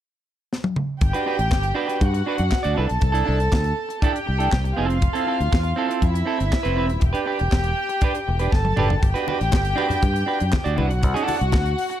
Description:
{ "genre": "disco", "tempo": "120 BPM", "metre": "4/4", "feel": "straight", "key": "G major", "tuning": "A4 = 440 Hz", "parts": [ { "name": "tight funk drum kit", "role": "drums", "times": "0.5-12.0 s", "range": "handclaps, hi-hat, kick drum, snare drum, toms", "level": "-22 LUFS", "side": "equal", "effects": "none" }, { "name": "warm studio violin section", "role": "second line", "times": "1.0-12.0 s", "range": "E4 to A5", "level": "-25 LUFS", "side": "equal", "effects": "none" }, { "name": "clean electric guitar", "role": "accompaniment", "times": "1.0-11.9 s", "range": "C4 to D5", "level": "-26 LUFS", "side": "right 6 dB", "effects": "none" }, { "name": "fingered electric bass", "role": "bass", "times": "1.0-11.7 s", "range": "Eb1 to G2", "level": "-22 LUFS", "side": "equal", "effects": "none" }, { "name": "congas", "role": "percussion", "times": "9.3-11.6 s", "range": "none", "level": "-30 LUFS", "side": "left 5 dB", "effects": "none" } ], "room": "light reverb, small room ambience", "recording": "dark, warm production", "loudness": "-19 LUFS", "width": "side -11 dB against mid", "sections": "0.0-1.0 A section; 1.0-12.0 B section", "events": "drum fill 0.5-1.0, 8.5-9.0", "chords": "0.0 N.C.; 1.0 Gmaj7; 2.8 C69; 4.8 Fmaj7; 7.0 Em7; 9.0 Gmaj7; 10.8 C69" }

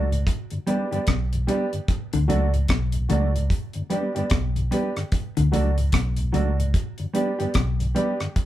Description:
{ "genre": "roots reggae", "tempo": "74 BPM", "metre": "4/4", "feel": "swing 61% on 16ths", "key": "unclear", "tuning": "A4 = 440 Hz", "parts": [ { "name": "mellow electric guitar", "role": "accompaniment", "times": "0.0-8.1 s", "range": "F#3 to G4", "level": "-28 LUFS", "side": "right 2 dB", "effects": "spring reverb" }, { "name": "mellow electric guitar", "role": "riff", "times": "0.0-7.8 s", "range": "B2 to D3", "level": "-27 LUFS", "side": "left 4 dB", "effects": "none" }, { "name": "dark grand piano", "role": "stabs", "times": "0.0-8.2 s", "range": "F#4 to D5", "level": "-28 LUFS", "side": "right 2 dB", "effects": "none" }, { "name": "vintage muted fingered electric bass", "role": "bass", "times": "0.0-7.9 s", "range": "B1 to D2", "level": "-23 LUFS", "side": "equal", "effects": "none" }, { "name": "mellow tonewheel organ", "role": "accompaniment", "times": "0.1-8.3 s", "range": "D2 to D4", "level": "-30 LUFS", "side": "left 1 dB", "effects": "slow rotary speaker" }, { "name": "deep reggae drum kit", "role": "drums", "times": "0.1-8.5 s", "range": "hi-hat, kick drum, rim click", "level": "-25 LUFS", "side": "equal", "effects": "none" } ], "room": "light reverb", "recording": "band playing live in one room, cassette tape", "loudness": "-21 LUFS", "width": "side -13 dB against mid", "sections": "0.0-8.5 A section", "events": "none", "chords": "0.3 G; 1.9 D; 3.5 G; 5.1 D; 6.7 G" }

